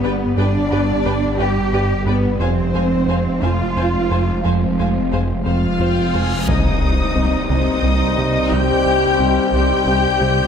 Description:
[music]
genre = cinematic, hybrid orchestral and electronic film score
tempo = 59 BPM (dotted quarters)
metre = 6/8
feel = straight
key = C minor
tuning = A4 = 440 Hz
[part]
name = warm symphonic violin section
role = melody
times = 0.0-10.5 s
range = F4 to G6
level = -27 LUFS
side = left 4 dB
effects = none
[part]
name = rich symphonic violin section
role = second line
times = 0.0-10.5 s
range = D5 to Ab5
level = -25 LUFS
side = left 5 dB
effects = none
[part]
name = rich symphonic viola section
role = accompaniment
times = 0.0-10.5 s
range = Eb4 to C5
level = -25 LUFS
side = equal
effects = none
[part]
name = warbly tape-like pad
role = sustained chords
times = 0.0-10.5 s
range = G3 to F5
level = -24 LUFS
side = left 1 dB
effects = chorus, built-in reverb
[part]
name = tight sequenced synth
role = arpeggios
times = 0.0-10.4 s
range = C3 to G4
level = -27 LUFS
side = left 2 dB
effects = chorus, ping-pong delay
[part]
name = round analog bass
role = riff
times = 0.0-10.4 s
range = C2 to C3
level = -22 LUFS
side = right 1 dB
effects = none
[part]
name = phased detuned saw bass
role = bass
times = 0.0-10.5 s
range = F1 to C2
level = -26 LUFS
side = left 1 dB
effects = phaser
[part]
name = warm symphonic cello section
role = bass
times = 0.0-10.3 s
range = C3 to G4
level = -24 LUFS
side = right 3 dB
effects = none
[part]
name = warm symphonic double bass section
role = bass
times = 0.0-10.3 s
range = F1 to C2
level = -25 LUFS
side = right 3 dB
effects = none
[part]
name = reverse cymbal and impact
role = sound effects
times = 6.1-8.5 s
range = none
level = -26 LUFS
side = left 1 dB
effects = none
[part]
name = warm French horn section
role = sustained chords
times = 6.5-10.5 s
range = C4 to C5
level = -26 LUFS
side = left 4 dB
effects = none
[part]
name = warm trombone section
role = sustained chords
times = 6.5-10.5 s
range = Eb3 to G3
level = -26 LUFS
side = right 4 dB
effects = none
[sound]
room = wet recital hall reverb, RT60 1.3 s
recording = none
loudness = -15 LUFS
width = side -7 dB against mid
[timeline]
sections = 0.0-6.5 A section; 6.5-10.5 B section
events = reverse cymbal 6.1-6.5; impact 6.5-8.5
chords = 0.0 G; 2.4 Fm; 6.5 Cm

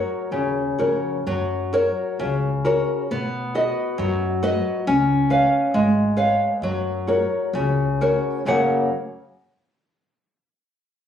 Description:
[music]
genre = fado-style ballad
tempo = 67 BPM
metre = 2/4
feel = uneven beats, rubato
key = F# major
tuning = A4 = 441 Hz
[part]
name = nylon-string guitar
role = accompaniment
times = 0.0-8.9 s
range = F#2 to F#5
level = -20 LUFS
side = left 1 dB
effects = none
[part]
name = upright bass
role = bass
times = 0.3-8.9 s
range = F#1 to F#2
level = -27 LUFS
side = left 1 dB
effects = none
[sound]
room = moderate small room reverb, RT60 0.6 s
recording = recorded on a phone in the room, studio reverb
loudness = -19 LUFS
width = side -9 dB against mid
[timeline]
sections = 0.0-1.3 A section; 1.3-8.5 B section; 8.5-10.3 C section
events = none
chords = 0.0 F#; 3.1 B; 4.9 C#7; 6.6 F#

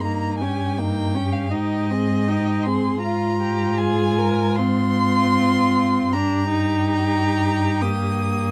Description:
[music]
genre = classical, slow romantic movement for string quartet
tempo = 63-82 BPM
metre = 4/4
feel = rubato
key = Eb major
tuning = A4 = 440 Hz
[part]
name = rich violin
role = melody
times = 0.0-8.5 s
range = Eb5 to Eb6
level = -28 LUFS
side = equal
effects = none
[part]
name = rich violin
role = second line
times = 0.0-8.5 s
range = Eb4 to Bb4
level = -31 LUFS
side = equal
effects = none
[part]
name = rich viola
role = accompaniment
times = 0.0-8.5 s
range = Bb3 to F4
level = -25 LUFS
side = equal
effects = none
[part]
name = rich cello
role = bass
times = 0.0-8.5 s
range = G2 to Ab2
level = -25 LUFS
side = equal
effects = none
[sound]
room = moderate studio reverb, RT60 0.5 s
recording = none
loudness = -21 LUFS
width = mono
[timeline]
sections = 0.0-8.5 A section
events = none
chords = 0.0 Eb7/G; 1.5 Abmaj7; 3.0 Bb5/Ab; 6.1 Eb/G

